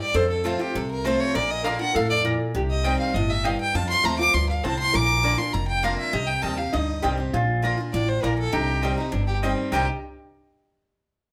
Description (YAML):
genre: bluegrass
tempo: 201 BPM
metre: 4/4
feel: straight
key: C dorian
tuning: A4 = 443 Hz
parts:
  - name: rich fiddle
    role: melody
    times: 0.0-9.9 s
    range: D4 to D6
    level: -27 LUFS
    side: equal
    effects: none
  - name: lap resonator guitar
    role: second line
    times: 0.0-9.9 s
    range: Eb4 to C5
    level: -33 LUFS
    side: equal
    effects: none
  - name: picked steel-string acoustic guitar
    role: accompaniment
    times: 0.0-9.9 s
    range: F2 to G4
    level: -30 LUFS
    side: equal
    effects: none
  - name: upright bass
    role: bass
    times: 0.1-9.9 s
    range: F1 to F2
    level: -30 LUFS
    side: equal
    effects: none
  - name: mandolin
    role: stabs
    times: 0.4-9.8 s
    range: Bb3 to Bb5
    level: -32 LUFS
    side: equal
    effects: none
room: moderate large studio reverb, RT60 0.8 s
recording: band playing live in one room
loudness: -23 LUFS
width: mono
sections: 0.0-7.3 A section; 7.3-9.7 B section; 9.7-10.9 C section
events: none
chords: 0.1 F; 1.3 Bb; 2.5 Cm; 3.7 F; 4.9 Bb; 6.1 Cm; 7.3 Bb; 8.5 Cm